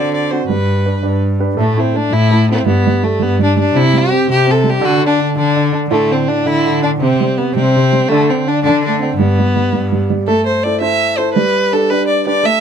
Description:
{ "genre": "celtic folk, Celtic jig", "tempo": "110 BPM (dotted quarters)", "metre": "6/8", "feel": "straight", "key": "G major", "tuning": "A4 = 440 Hz", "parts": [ { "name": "warm violin", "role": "melody", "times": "0.0-12.6 s", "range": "A3 to E5", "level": "-15 LUFS", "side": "left 1 dB", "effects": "none" }, { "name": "warm upright piano", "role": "accompaniment", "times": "0.0-12.6 s", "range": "A2 to C5", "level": "-17 LUFS", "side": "right 4 dB", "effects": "none" }, { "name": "rich cello", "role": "bass", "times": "0.0-10.2 s", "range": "G2 to D3", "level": "-16 LUFS", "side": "left 1 dB", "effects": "none" } ], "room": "light reverb", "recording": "close, detailed microphones", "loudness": "-12 LUFS", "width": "side -8 dB against mid", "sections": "0.0-1.6 A section; 1.6-10.3 B section; 10.3-12.6 B section", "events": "none", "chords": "0.5 G; 1.6 A5; 2.7 G; 3.7 C5; 4.8 D5; 7.0 C5; 8.1 Amadd11/D; 8.6 D5; 9.2 G; 10.3 Am; 11.4 G" }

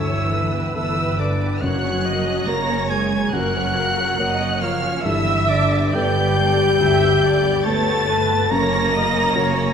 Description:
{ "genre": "cinematic", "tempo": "70 BPM", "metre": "4/4", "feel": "rubato", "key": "unclear", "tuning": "A4 = 440 Hz", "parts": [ { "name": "warm studio violin section", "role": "melody", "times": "0.0-9.7 s", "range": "D6 to A#6", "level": "-26 LUFS", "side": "left 1 dB", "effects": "none" }, { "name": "mellow hollow silver concert flute", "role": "second line", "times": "0.0-9.7 s", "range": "D5 to A#5", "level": "-28 LUFS", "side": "equal", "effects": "none" }, { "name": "warm oboe", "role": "second line", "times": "0.0-9.7 s", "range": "D5 to A#5", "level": "-27 LUFS", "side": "right 2 dB", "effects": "none" }, { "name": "warm studio violin section", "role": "second line", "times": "0.0-9.7 s", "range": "A3 to C#5", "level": "-30 LUFS", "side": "left 2 dB", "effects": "none" }, { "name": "felt-muted upright piano", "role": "accompaniment", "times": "0.0-9.7 s", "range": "C#2 to C#5", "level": "-28 LUFS", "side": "left 1 dB", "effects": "none" }, { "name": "rich studio viola section", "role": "accompaniment", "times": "0.0-9.7 s", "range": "A#4 to E5", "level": "-27 LUFS", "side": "right 2 dB", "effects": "none" }, { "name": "mellow French horn section", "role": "sustained chords", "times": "0.0-9.7 s", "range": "D4 to A#4", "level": "-24 LUFS", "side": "left 4 dB", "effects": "none" }, { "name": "concert harp", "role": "arpeggios", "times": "0.0-9.7 s", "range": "F#2 to C#5", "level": "-30 LUFS", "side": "left 5 dB", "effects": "none" }, { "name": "rich studio double bass section", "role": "bass", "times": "0.0-9.7 s", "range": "F#1 to G1", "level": "-25 LUFS", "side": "right 3 dB", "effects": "none" }, { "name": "warm studio cello section", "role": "bass", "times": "0.0-9.7 s", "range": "D3 to A#3", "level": "-27 LUFS", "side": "right 4 dB", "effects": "none" }, { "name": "timpani", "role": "percussion", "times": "1.6-2.9 s", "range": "F#2", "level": "-31 LUFS", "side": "equal", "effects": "none" } ], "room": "wet scoring stage reverb, RT60 2.0 s", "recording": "minimal, uncompressed stereo recording", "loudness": "-17 LUFS", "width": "side -7 dB against mid", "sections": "0.0-9.7 A section", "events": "none", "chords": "0.0 Gadd9; 1.6 F#; 5.0 Gadd9; 8.5 F#" }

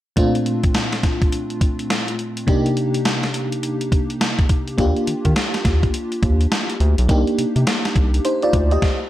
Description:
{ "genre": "R&B, new jack swing", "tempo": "104 BPM", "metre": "4/4", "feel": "swing 62% on 16ths", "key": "Bb major", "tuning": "A4 = 440 Hz", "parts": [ { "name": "FM electric piano with soft pad layer", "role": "accompaniment", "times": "0.2-9.0 s", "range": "Bb2 to Eb5", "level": "-21 LUFS", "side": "equal", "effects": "chorus, tremolo" }, { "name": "gated 80s digital drum machine", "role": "drums", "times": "0.2-9.0 s", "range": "hi-hat, kick drum, snare drum", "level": "-19 LUFS", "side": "equal", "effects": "gated reverb, gated reverb snare" }, { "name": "round analog bass", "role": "bass", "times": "4.8-8.8 s", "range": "Cb2 to Eb3", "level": "-17 LUFS", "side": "equal", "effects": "none" } ], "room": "light reverb", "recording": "none", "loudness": "-17 LUFS", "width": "side -14 dB against mid", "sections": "0.2-9.1 A section", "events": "stop 8.8", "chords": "0.2 Bbmaj7; 2.5 Cm7; 4.8 Ebmaj7; 7.1 Cm7" }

